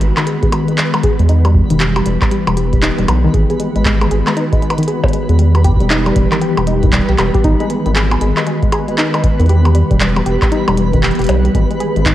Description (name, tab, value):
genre	IDM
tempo	117 BPM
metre	4/4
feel	swing 62% on 16ths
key	G# minor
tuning	A4 = 440 Hz
part	glassy FM pad	sustained chords	0.0-12.1 s	D#3 to G4	-19 LUFS	left 1 dB	ensemble chorus, built-in reverb
part	warbly dusty pluck	arpeggios	0.0-12.1 s	D#3 to G#4	-19 LUFS	left 1 dB	chorus, tape echo
part	round analog bass	bass	0.0-12.1 s	E1 to E2	-14 LUFS	equal	none
part	glitchy drum kit	drums	0.0-12.1 s	handclaps, hi-hat, percussion blips	-20 LUFS	equal	none
part	twinkling granular texture	texture	0.0-12.1 s	B3 to B4	-24 LUFS	right 1 dB	built-in reverb
part	electronic kick drum	drums	0.4-12.1 s	none	-16 LUFS	equal	none
room	light reverb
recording	worn, warbling old tape, cassette tape, warbly pitch drift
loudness	-11 LUFS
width	side -13 dB against mid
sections	0.0-12.1 A section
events	none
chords	0.0 G#m7; 1.3 Em; 3.3 G#m7; 5.4 Em; 7.4 G#m7; 9.5 Em; 11.5 G#m7